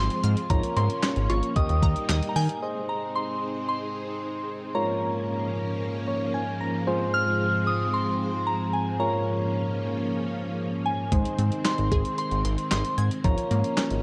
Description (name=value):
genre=synth-pop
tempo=113 BPM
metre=4/4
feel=straight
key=Ab major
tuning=A4 = 440 Hz
part: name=soft synth bell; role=melody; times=0.0-14.0 s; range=Ab5 to F6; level=-32 LUFS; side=equal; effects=chorus
part: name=soft electric-piano-like synth keys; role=accompaniment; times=0.0-14.0 s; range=Ab3 to Bb5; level=-34 LUFS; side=equal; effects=chorus
part: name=string machine, full ensemble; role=sustained chords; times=0.0-14.0 s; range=Ab2 to Eb4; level=-32 LUFS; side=equal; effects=ensemble chorus
part: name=resonant blip pluck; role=arpeggios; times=0.0-2.5, 11.1-13.9 s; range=F3 to Ab6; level=-36 LUFS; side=equal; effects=phaser, tape echo
part: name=fat analog bass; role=bass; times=0.0-2.5, 11.1-14.0 s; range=Ab1 to Eb3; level=-27 LUFS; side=equal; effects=none
part: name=clean 12-bit digital drum machine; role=drums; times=0.1-2.6, 11.1-14.0 s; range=handclaps, hi-hat, kick drum, snare drum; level=-29 LUFS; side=equal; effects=none
room=light reverb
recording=dark, warm production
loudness=-26 LUFS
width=mono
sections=0.0-2.6 A section; 2.6-14.0 A section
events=synth keys fill 5.8-6.9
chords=0.0 Fm/Ab; 0.5 Bbm/Ab; 1.6 Eb; 2.6 Ab; 4.7 Bbm/Ab; 6.9 Fm/Ab; 9.0 Bbm/Ab; 11.1 Ab; 13.2 Bbm/Ab